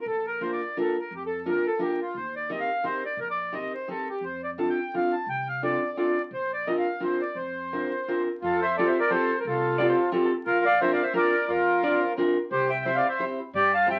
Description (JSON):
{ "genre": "musette waltz", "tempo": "174 BPM", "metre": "3/4", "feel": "swing 55% on 8ths, rubato", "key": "Bb major, F major from 8.4 s", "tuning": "A4 = 443 Hz", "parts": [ { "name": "accordion", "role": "melody", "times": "0.0-14.0 s", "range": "F4 to A5", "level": "-28 LUFS", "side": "equal", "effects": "none" }, { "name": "upright bass", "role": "bass", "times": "0.1-14.0 s", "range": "Bb1 to G2", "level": "-43 LUFS", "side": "equal", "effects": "none" }, { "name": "fingerpicked steel-string acoustic guitar", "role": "accompaniment", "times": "0.4-14.0 s", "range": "Bb3 to C5", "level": "-29 LUFS", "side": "equal", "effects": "none" }, { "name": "hollow-body jazz guitar", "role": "second line", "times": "9.8-12.4 s", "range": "A4 to D5", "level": "-32 LUFS", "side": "equal", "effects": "none" } ], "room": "wet studio reverb, RT60 0.5 s", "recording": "very old 78 rpm record, vinyl crackle", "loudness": "-26 LUFS", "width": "mono", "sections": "0.1-8.4 A section; 8.4-14.0 B section", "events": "none", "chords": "0.1 Bb; 2.1 Eb6; 4.2 F6; 6.3 Bbadd9; 8.4 Fadd9; 10.5 Bbadd9; 12.5 C" }